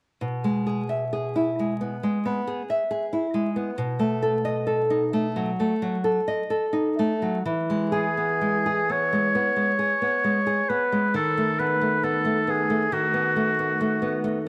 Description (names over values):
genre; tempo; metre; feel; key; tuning
romantic duo for oboe and classical guitar; 66 BPM; 4/4; uneven beats, rubato; E major; A4 = 440 Hz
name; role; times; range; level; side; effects
nylon-string guitar; accompaniment; 0.2-14.5 s; B2 to E5; -26 LUFS; equal; none
warm oboe; melody; 7.9-14.2 s; F#4 to C#5; -26 LUFS; equal; analog delay
room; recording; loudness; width
moderate plate reverb, RT60 2.3 s; vinyl crackle; -24 LUFS; mono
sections
0.2-7.5 A section; 7.5-14.5 B section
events
none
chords
0.2 E/B; 3.8 B7; 7.5 E; 11.1 B7/D#